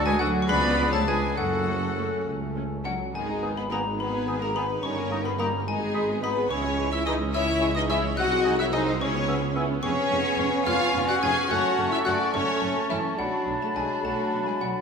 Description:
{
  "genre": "cinematic, playful, whimsical film cue",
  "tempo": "71 BPM (dotted quarters)",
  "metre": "6/8",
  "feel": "straight",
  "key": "F# minor, G# minor from 3.1 s, F# minor from 9.8 s",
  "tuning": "A4 = 441 Hz",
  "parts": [
    { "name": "rich studio violin section", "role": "melody", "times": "0.0-14.7 s", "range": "C#4 to B5", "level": "-35 LUFS", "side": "left 3 dB", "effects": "none" },
    { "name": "xylophone with plastic mallets", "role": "melody", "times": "0.0-14.8 s", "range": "E5 to G#6", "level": "-32 LUFS", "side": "left 3 dB", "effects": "none" },
    { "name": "hollow concert flute", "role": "second line", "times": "0.0-14.8 s", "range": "A4 to E6", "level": "-33 LUFS", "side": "left 2 dB", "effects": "none" },
    { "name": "warm clarinet", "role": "second line", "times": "0.0-14.8 s", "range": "C#4 to A4", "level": "-35 LUFS", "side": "left 1 dB", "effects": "none" },
    { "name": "warm oboe", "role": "second line", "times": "0.0-14.8 s", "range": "F#4 to B5", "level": "-34 LUFS", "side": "right 1 dB", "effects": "none" },
    { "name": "warm studio violin section", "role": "second line", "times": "0.0-14.7 s", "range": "E4 to G#5", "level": "-31 LUFS", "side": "left 2 dB", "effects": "none" },
    { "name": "warm French horn section", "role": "sustained chords", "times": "0.0-14.7 s", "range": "E3 to G#4", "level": "-31 LUFS", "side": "left 2 dB", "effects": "none" },
    { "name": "dark tuba", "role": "bass", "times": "0.0-14.7 s", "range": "E#1 to D2", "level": "-34 LUFS", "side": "right 1 dB", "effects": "none" },
    { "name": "rich studio cello section", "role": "bass", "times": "0.0-14.7 s", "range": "E3 to G#4", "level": "-33 LUFS", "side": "right 1 dB", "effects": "none" },
    { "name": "rich studio double bass section", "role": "bass", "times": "0.0-14.7 s", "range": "G1 to F#2", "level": "-34 LUFS", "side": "right 3 dB", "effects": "none" },
    { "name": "warm studio viola section", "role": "accompaniment", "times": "0.2-14.7 s", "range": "D#3 to G#4", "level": "-35 LUFS", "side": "right 1 dB", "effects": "none" },
    { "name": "mellow bassoon", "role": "accompaniment", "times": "3.4-14.8 s", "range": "F#3 to B3", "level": "-34 LUFS", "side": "right 3 dB", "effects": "none" }
  ],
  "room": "wet scoring stage reverb, RT60 1.9 s",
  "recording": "minimal, uncompressed stereo recording",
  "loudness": "-23 LUFS",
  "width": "side -6 dB against mid",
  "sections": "0.0-3.1 A section; 3.1-14.8 B section",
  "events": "none",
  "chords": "0.5 C#7b9; 1.4 F#m; 3.1 G#m; 4.8 D#7/G; 5.7 G#m; 6.5 C#m; 8.2 G#7/B#; 9.0 C#m7; 9.8 C#7/E#; 11.5 F#m; 13.2 Bm7"
}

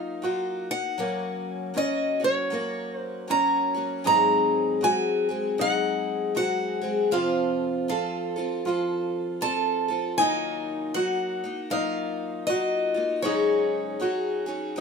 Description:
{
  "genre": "acoustic folk duo or small band",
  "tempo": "78 BPM",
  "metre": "4/4",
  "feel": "swing 61% on 8ths",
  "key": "unclear",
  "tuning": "A4 = 440 Hz",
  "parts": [
    { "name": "picked steel-string acoustic guitar", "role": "melody", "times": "0.0-14.8 s", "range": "Db5 to Bb5", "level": "-27 LUFS", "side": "equal", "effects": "none" },
    { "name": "picked twelve-string acoustic guitar", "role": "accompaniment", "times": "0.0-14.8 s", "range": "F2 to A4", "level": "-28 LUFS", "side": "left 2 dB", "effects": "none" },
    { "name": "bright upright piano", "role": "arpeggios", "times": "0.0-14.8 s", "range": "Bb3 to A4", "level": "-30 LUFS", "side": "right 1 dB", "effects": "none" }
  ],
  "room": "moderate small room reverb, RT60 0.5 s",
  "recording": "minimal, uncompressed stereo recording",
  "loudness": "-23 LUFS",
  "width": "side -5 dB against mid",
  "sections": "0.0-14.8 A section",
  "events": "none",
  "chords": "0.0 Ebmadd9; 1.0 Gb; 4.1 Ab7; 7.1 F; 10.2 Ebmadd9; 13.2 Ab7sus4"
}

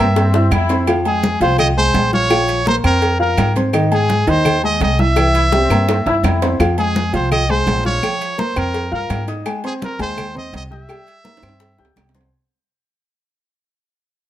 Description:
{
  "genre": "latin, salsa",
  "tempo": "168 BPM",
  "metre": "4/4",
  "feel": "straight",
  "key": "unclear",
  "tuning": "A4 = 442 Hz",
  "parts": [
    { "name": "bright trumpet", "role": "melody", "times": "0.0-11.9 s", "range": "Ab4 to E5", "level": "-19 LUFS", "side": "right 2 dB", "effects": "none" },
    { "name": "bright trombone section", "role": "second line", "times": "0.0-0.9, 5.3-6.6 s", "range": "C4 to E4", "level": "-23 LUFS", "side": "left 2 dB", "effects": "none" },
    { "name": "dark baby grand piano", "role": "accompaniment", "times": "0.0-12.3 s", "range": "Eb3 to G6", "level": "-20 LUFS", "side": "left 1 dB", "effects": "none" },
    { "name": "upright bass", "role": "bass", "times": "0.0-12.3 s", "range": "Bb1 to Ab2", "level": "-19 LUFS", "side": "equal", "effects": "none" },
    { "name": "agogo bells and timbales", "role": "percussion", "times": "0.2-12.3 s", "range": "none", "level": "-25 LUFS", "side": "right 3 dB", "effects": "none" },
    { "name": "congas", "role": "percussion", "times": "0.2-12.3 s", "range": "none", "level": "-25 LUFS", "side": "left 1 dB", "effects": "none" },
    { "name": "cowbell and bongos", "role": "percussion", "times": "0.2-12.3 s", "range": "none", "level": "-25 LUFS", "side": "left 2 dB", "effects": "none" },
    { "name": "claves", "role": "percussion", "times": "0.5-12.1 s", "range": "none", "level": "-30 LUFS", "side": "equal", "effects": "none" }
  ],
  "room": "light reverb",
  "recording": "none",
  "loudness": "-14 LUFS",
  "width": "side -12 dB against mid",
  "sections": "0.0-6.6 A section; 6.6-12.3 B section",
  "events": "drum fill 0.2-0.9, 5.2-6.6, 11.2-12.3; fade-out 6.6-12.3",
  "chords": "0.0 C7; 0.9 Bbsus2; 3.7 Ab; 5.2 C7; 6.6 Fm; 8.0 Bbmadd9; 9.5 Ab; 10.9 C7"
}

